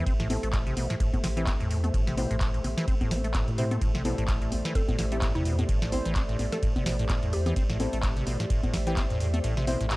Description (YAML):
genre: acid house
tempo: 128 BPM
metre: 4/4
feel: swing 57% on 16ths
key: A minor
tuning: A4 = 439 Hz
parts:
  - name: dark analog pad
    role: sustained chords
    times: 0.0-10.0 s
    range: A3 to E5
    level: -37 LUFS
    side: equal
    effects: lush chorus, sidechain pumping
  - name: deep acid bass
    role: riff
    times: 0.0-10.0 s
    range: A1 to C4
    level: -32 LUFS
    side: equal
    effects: tube saturation, sidechain pumping
  - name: warm sub bass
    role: bass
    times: 0.0-10.0 s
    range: A1 to A2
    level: -30 LUFS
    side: equal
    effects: sidechain pumping
  - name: ethereal airy pad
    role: texture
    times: 0.0-10.0 s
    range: G4 to E5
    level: -41 LUFS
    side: equal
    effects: ensemble chorus, built-in reverb, sidechain pumping
  - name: booming analog drum machine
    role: drums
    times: 0.1-10.0 s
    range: congas, handclaps, hi-hat, ride cymbal, snare drum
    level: -34 LUFS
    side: equal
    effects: studio reverb
  - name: electronic kick drum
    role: drums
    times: 0.1-9.1 s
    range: none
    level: -28 LUFS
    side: equal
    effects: studio reverb
  - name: deep mellow chord stab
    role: stabs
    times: 0.3-9.8 s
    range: C4 to C5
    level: -36 LUFS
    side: left 1 dB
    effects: chorus, tape echo
  - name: mallet-like synth pluck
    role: melody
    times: 4.8-7.5 s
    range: E4 to A4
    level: -38 LUFS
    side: equal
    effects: chorus, analog delay
room: digital ambience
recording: dry, gritty hardware recording, cassette tape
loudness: -25 LUFS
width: side -20 dB against mid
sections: 0.0-10.0 A section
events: kick drops out 9.4-10.0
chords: 0.0 Am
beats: | 0.06 0.53 1.00 1.47 | 1.94 2.41 2.88 3.35 | 3.81 4.28 4.75 5.22 | 5.69 6.16 6.63 7.09 | 7.56 8.03 8.50 8.97 | 9.44 9.91